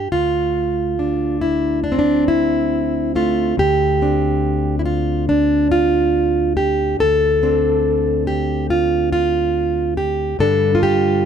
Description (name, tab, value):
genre	folk, solo fingerstyle acoustic guitar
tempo	70 BPM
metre	4/4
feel	straight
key	D minor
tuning	A4 = 440 Hz
part	fingerpicked plugged-in steel-string acoustic guitar	solo	0.0-11.3 s	D2 to A4	-15 LUFS	equal	none
room	little or no reverb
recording	close, detailed microphones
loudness	-15 LUFS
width	side -8 dB against mid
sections	0.0-3.6 A section; 3.6-11.3 A section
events	none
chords	0.1 Dm; 3.6 Dm7; 10.4 G7(no3)